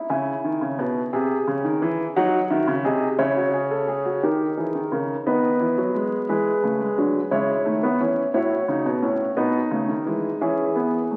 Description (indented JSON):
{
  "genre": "classical, baroque-style 4-part fugue for grand piano",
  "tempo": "58 BPM (dotted quarters)",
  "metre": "6/8",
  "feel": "straight",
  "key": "C# minor",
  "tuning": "A4 = 441 Hz",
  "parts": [
    { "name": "dark concert grand piano", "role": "solo", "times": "0.0-11.2 s", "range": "A2 to G#5", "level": "-23 LUFS", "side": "equal", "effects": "none" }
  ],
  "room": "wet recital hall reverb, RT60 1.8 s",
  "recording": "very old 78 rpm record, vinyl crackle",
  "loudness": "-23 LUFS",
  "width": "mono",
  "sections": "0.1-4.2 A section; 4.2-11.2 B section",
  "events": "none",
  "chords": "0.1 C#m; 1.1 G#/B#; 2.2 G#7; 3.2 C#m; 4.2 D#7; 5.3 G#m/D#; 6.3 E7; 7.3 A/C#; 8.3 F#m7/A; 9.4 B; 10.4 E"
}